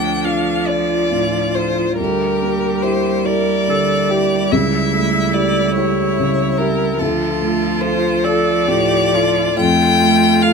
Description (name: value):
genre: classical, slow romantic movement for piano quartet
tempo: 47 BPM (dotted quarters)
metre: 6/8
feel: uneven beats, rubato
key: D minor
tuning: A4 = 437 Hz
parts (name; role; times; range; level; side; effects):
- clear violin; melody; 0.0-10.5 s; A4 to G5; -18 LUFS; left 5 dB; none
- clear cello; second line; 0.0-10.5 s; F3 to A3; -21 LUFS; right 8 dB; none
- clear viola; accompaniment; 0.0-10.5 s; D4 to Bb4; -22 LUFS; right 1 dB; none
- dark baby grand piano; accompaniment; 0.0-10.5 s; C#2 to A4; -19 LUFS; left 1 dB; none
room: light reverb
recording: minimal, uncompressed stereo recording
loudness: -14 LUFS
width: side -5 dB against mid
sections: 0.0-10.5 A section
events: none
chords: 0.0 Dm; 2.0 Em7b5/D; 4.5 A7/C#; 7.0 Dm; 9.6 F